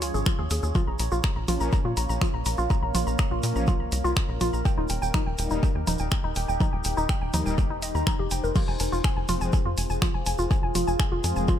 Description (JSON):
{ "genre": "melodic techno", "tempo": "123 BPM", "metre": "4/4", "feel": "straight", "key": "unclear", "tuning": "A4 = 440 Hz", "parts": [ { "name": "deep dark ambient pad", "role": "sustained chords", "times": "0.0-11.6 s", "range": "Bb3 to F5", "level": "-33 LUFS", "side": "equal", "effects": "chorus, built-in reverb, sidechain pumping" }, { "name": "woody wave-folded pluck", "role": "arpeggios", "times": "0.0-11.5 s", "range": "Eb4 to Bb5", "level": "-31 LUFS", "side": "left 1 dB", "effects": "chorus, vintage 12-bit sampler grit, sidechain pumping, analog delay" }, { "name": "tight sequencer bass", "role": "bass", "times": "0.0-11.6 s", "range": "Eb1 to Bb2", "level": "-28 LUFS", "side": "equal", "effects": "sidechain pumping" }, { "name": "punchy analog drum machine", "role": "drums", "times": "0.0-11.6 s", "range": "congas, crash cymbal, finger snaps, hi-hat", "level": "-32 LUFS", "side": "right 2 dB", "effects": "tape echo" }, { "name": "tube shaker", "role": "percussion", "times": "0.0-11.6 s", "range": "none", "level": "-38 LUFS", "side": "right 5 dB", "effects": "none" }, { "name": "electronic kick drum", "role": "drums", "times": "0.3-11.6 s", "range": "none", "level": "-24 LUFS", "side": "equal", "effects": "overdrive" }, { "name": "brassy analog pad", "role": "stabs", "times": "1.5-11.4 s", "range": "F3 to Eb4", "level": "-36 LUFS", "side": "left 2 dB", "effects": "chorus, sidechain pumping, tape echo" } ], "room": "little or no reverb", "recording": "echo-heavy mix", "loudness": "-23 LUFS", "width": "side -10 dB against mid", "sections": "0.0-11.6 A section", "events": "none", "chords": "0.0 Db; 0.8 Bbm; 4.7 Eb; 8.6 Fm" }